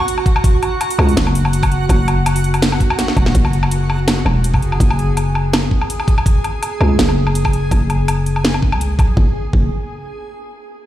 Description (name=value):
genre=half-time drum and bass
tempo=165 BPM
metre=4/4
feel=swing 54% on 16ths, half-time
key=unclear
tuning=A4 = 439 Hz
part: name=drum and bass drum kit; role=drums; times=0.0-9.1 s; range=hi-hat, snare drum, woodblock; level=-20 LUFS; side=left 1 dB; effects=none
part: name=backwards swelling texture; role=texture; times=0.0-9.2 s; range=F#4 to G#4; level=-24 LUFS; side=right 3 dB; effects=built-in reverb
part: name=electronic kick drum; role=drums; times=0.3-9.6 s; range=none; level=-15 LUFS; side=equal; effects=none
part: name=growling 808-style bass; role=bass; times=1.0-9.7 s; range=E1 to C#2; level=-15 LUFS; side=equal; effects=none
room=little or no reverb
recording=played on a big sound system in a bare room, stone room reverb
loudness=-13 LUFS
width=side -13 dB against mid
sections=0.0-3.4 A section; 3.4-9.2 B section; 9.2-10.6 C section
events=drop 0.0-3.4; drum fill 3.0-3.4; band accent 3.3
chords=0.0 N.C.; 3.4 F#sus2; 9.2 N.C.